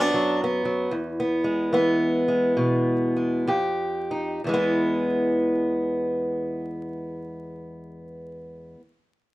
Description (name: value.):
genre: acoustic country blues, solo or duo.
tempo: 59-80 BPM.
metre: 4/4.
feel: swing 66% on 8ths.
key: E major.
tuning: A4 = 440 Hz.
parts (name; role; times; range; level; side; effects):
fingerpicked steel-string acoustic guitar; solo; 0.0-8.8 s; E2 to G4; -22 LUFS; equal; none.
room: moderate studio reverb, RT60 0.8 s.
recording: minimal, uncompressed stereo recording, vinyl crackle.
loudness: -22 LUFS.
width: side -18 dB against mid.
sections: 0.0-4.5 A section; 4.5-8.5 B section.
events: slowing down 0.0-4.5.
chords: 0.0 B5; 0.9 E; 3.5 Fsus2; 4.5 E.